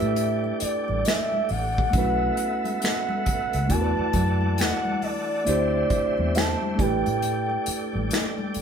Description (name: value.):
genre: R&B, neo-soul.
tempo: 68 BPM.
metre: 4/4.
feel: swing 62% on 16ths.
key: unclear.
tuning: A4 = 438 Hz.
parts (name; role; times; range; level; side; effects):
gliding portamento lead; melody; 0.0-8.1 s; D5 to A5; -27 LUFS; right 1 dB; chorus, phaser.
mellow reed electric piano; accompaniment; 0.0-8.6 s; A3 to C5; -28 LUFS; right 2 dB; none.
tonewheel organ; sustained chords; 0.0-8.6 s; D3 to A4; -32 LUFS; equal; fast rotary speaker.
vintage muted fingered electric bass; bass; 0.0-8.6 s; A1 to A2; -27 LUFS; equal; none.
unplugged drum kit; drums; 0.0-8.6 s; finger snaps, hi-hat, kick drum, snare drum; -27 LUFS; equal; none.
congas; percussion; 0.2-8.6 s; none; -36 LUFS; left 5 dB; none.
room: moderate studio reverb, RT60 0.9 s.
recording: band playing live in one room.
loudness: -22 LUFS.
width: side -7 dB against mid.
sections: 0.0-8.6 A section.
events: none.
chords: 0.0 A9sus4; 1.9 B9sus4; 3.7 E9sus4; 5.5 D9sus4; 6.8 A9sus4.